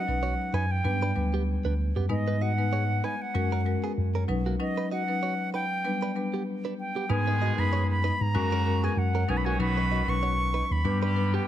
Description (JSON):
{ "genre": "afrobeats", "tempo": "96 BPM", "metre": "4/4", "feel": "swing 55% on 16ths", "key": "B major", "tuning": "A4 = 439 Hz", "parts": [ { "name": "concert flute", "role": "melody", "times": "0.0-11.5 s", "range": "D#5 to C#6", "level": "-31 LUFS", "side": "equal", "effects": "ping-pong delay" }, { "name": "direct-recorded clean electric guitar", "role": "riff", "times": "0.0-11.4 s", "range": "A#3 to D#5", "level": "-37 LUFS", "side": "right 8 dB", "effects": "ping-pong delay" }, { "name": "marimba with medium mallets", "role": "accompaniment", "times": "0.1-11.4 s", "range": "F#3 to B4", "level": "-31 LUFS", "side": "left 3 dB", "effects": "none" }, { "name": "mellow tine electric piano", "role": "bass", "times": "0.1-11.4 s", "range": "B1 to G#2", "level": "-27 LUFS", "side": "equal", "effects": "fast stereo tremolo" }, { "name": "clear horn section", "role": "second line", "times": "7.1-11.5 s", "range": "C#3 to G#4", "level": "-36 LUFS", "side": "right 3 dB", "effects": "none" } ], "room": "light reverb, studio reverb", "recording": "none", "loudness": "-25 LUFS", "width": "side -11 dB against mid", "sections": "0.0-7.1 A section; 7.1-11.5 B section", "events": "break 4.6-7.1", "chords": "0.0 Badd9; 0.8 G; 2.1 G#m; 3.3 F#add9; 4.3 Badd9; 5.8 G; 7.1 G#m; 8.3 F#add9; 9.3 Badd9; 10.8 G" }